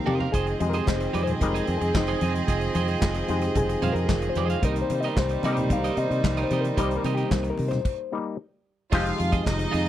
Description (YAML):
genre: disco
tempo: 112 BPM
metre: 4/4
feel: straight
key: unclear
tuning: A4 = 440 Hz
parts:
  - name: warm studio violin section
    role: second line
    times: 0.0-9.9 s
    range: G3 to F5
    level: -30 LUFS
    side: right 3 dB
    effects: none
  - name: auto-wah clav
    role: accompaniment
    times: 0.0-9.9 s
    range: F3 to F5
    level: -29 LUFS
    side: left 6 dB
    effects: overdrive
  - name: tonewheel organ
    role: sustained chords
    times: 0.0-9.9 s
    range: C3 to F4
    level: -32 LUFS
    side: right 1 dB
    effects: slow rotary speaker
  - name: electric guitar at the edge of break-up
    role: accompaniment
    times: 0.1-9.9 s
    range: F4 to F5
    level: -33 LUFS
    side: right 8 dB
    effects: spring reverb
  - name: fingered electric bass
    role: bass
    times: 0.1-9.9 s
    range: F1 to C3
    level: -28 LUFS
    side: equal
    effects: none
  - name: warm soul drum kit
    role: drums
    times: 0.1-9.9 s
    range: crash cymbal, handclaps, hi-hat, kick drum, snare drum, toms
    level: -27 LUFS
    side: equal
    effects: none
  - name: congas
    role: percussion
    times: 0.1-7.8 s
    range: none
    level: -34 LUFS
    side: left 4 dB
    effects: none
room: little or no reverb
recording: none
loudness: -22 LUFS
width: side -12 dB against mid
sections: 0.0-8.9 A section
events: drum fill 0.0-0.3; clav solo 0.0-8.9; stop 7.8-8.9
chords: 0.3 Fm7; 4.6 Cm7; 8.9 Fm7